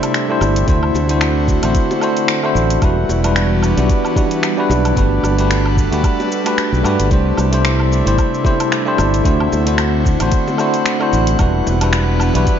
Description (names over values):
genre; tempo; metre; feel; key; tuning
sunset chillout; 112 BPM; 4/4; swing 56% on 16ths; unclear; A4 = 440 Hz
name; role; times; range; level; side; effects
bell-like tine electric piano; accompaniment; 0.0-12.6 s; G3 to C5; -18 LUFS; left 1 dB; auto-pan, low-pass filter, dub echo
airy breathy pad; sustained chords; 0.0-12.6 s; C3 to F#5; -20 LUFS; equal; chorus
deep house drum kit; drums; 0.0-12.6 s; finger snaps, hi-hat, shaker, woodblock; -23 LUFS; equal; studio reverb
modern bright fingered electric bass; bass; 0.4-12.4 s; E1 to G2; -16 LUFS; equal; tube saturation
bongos; percussion; 0.4-11.8 s; none; -30 LUFS; right 2 dB; none
electronic kick drum; drums; 0.7-12.6 s; none; -16 LUFS; equal; studio reverb
room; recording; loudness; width
light reverb, digital ambience; echo-heavy mix, nothing above 7.4 kHz; -13 LUFS; side -9 dB against mid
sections
0.0-12.6 A section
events
none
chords
0.0 C69; 0.7 D9; 2.8 Em9; 5.0 Gmaj9; 7.1 C69; 9.3 D9; 11.4 Em9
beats
0.14 | 0.68 1.22 1.75 2.29 | 2.82 3.36 3.89 4.43 | 4.96 5.50 6.04 6.57 | 7.11 7.64 8.18 8.71 | 9.25 9.79 10.32 10.86 | 11.39 11.93 12.46